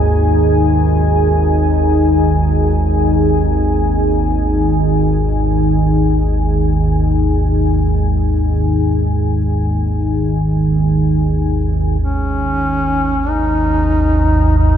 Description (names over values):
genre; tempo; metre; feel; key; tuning
dark ambient drone; free time; none; none; unclear; A4 = 439 Hz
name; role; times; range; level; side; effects
dark analog pad; sustained chords; 0.0-14.8 s; D#3 to G#5; -17 LUFS; equal; chorus
analog drone; drone; 0.0-14.8 s; G#1 to D#2; -15 LUFS; equal; wide subtle chorus
mellow duduk; melody; 12.0-14.8 s; C#4 to D#4; -16 LUFS; equal; diffuse ambient delay
room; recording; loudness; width
moderate huge ambient reverb, RT60 8.8 s; dark, warm production; -12 LUFS; side -9 dB against mid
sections
0.0-12.0 A section; 12.0-14.8 B section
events
none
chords
0.0 G#5